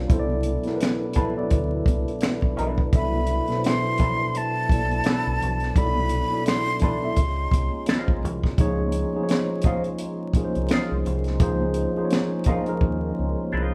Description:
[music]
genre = R&B, neo-soul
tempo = 85 BPM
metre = 4/4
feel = swing 57% on 16ths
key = unclear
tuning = A4 = 440 Hz
[part]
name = mellow tine electric piano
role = accompaniment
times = 0.0-13.7 s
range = B2 to F5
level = -29 LUFS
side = equal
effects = none
[part]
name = tonewheel organ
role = sustained chords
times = 0.0-13.7 s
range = B2 to F4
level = -37 LUFS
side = equal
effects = slow rotary speaker, overdrive, chorus vibrato
[part]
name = deep dub fingered electric bass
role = bass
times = 0.0-13.7 s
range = Bb1 to Eb2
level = -30 LUFS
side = equal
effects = none
[part]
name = compact cocktail drum kit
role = drums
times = 0.1-13.0 s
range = finger snaps, hi-hat, kick drum, snare drum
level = -25 LUFS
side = equal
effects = none
[part]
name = congas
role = percussion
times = 0.3-13.7 s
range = none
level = -40 LUFS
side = equal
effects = none
[part]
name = electric guitar through a small old amp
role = second line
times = 1.2-13.7 s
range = D4 to C5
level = -34 LUFS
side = equal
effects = wah
[part]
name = breathy concert flute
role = melody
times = 3.0-7.8 s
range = A5 to C6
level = -29 LUFS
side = equal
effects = none
[sound]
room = light reverb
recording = band playing live in one room, vinyl crackle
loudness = -23 LUFS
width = mono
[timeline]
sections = 0.0-13.7 A section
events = drum fill 12.8-13.7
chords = 0.1 Cmaj9; 7.2 Dbmaj9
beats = | 0.10 0.81 1.51 2.22 | 2.93 3.63 4.34 5.04 | 5.75 6.46 7.16 7.87 | 8.57 9.28 9.99 10.69 | 11.40 12.10 12.81 13.52

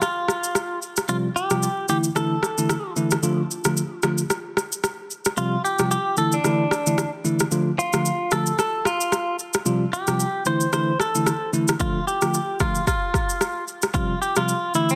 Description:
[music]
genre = afrobeats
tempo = 112 BPM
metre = 4/4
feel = swing 58% on 16ths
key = D minor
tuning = A4 = 440 Hz
[part]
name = direct-recorded clean electric guitar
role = melody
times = 0.0-15.0 s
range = D4 to C5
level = -27 LUFS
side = equal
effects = delay
[part]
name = afro-pop drum kit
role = drums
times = 0.0-15.0 s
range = kick drum, rim click, shaker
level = -27 LUFS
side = equal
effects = none
[part]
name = bell-like tine electric piano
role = accompaniment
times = 1.1-14.9 s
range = C3 to F4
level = -26 LUFS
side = equal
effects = none
[sound]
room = light reverb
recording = dense, heavily limited modern master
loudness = -23 LUFS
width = mono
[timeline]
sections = 0.0-15.0 A section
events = none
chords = 0.0 N.C.; 1.1 Csus4; 1.9 Asus4; 3.2 Dm; 5.4 Csus4; 6.2 Asus4; 7.5 Dm; 9.7 Csus4; 10.5 Asus4; 11.8 Dm; 13.9 Csus4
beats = 0.02 0.55 | 1.09 1.62 2.16 2.69 | 3.23 3.77 4.30 4.84 | 5.37 5.91 6.44 6.98 | 7.52 8.05 8.59 9.12 | 9.66 10.19 10.73 11.27 | 11.80 12.34 12.87 13.41 | 13.94 14.48

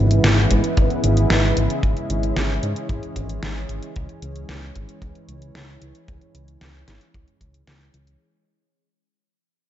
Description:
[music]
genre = synthwave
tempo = 113 BPM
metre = 4/4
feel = straight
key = unclear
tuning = A4 = 438 Hz
[part]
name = lush unison pad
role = sustained chords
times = 0.0-8.2 s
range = C#3 to E4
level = -25 LUFS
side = equal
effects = chorus
[part]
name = fat analog bass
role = bass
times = 0.0-8.2 s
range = G#1 to G#2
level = -21 LUFS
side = equal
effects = sidechain pumping
[part]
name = pop drum kit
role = drums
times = 0.1-8.2 s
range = hi-hat, snare drum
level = -24 LUFS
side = equal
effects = overdrive
[part]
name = kick drum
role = drums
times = 0.5-7.5 s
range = none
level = -23 LUFS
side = equal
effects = none
[sound]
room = light reverb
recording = dark, warm production, nothing above 7.8 kHz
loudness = -18 LUFS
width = side -12 dB against mid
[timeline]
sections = 0.0-8.2 A section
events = fade-out 0.0-8.2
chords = 0.0 E6/G#; 4.0 C#m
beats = 0.24 0.77 1.30 | 1.83 2.36 2.90 3.43 | 3.96 4.49 5.02 5.55 | 6.08 6.61 7.14 7.67

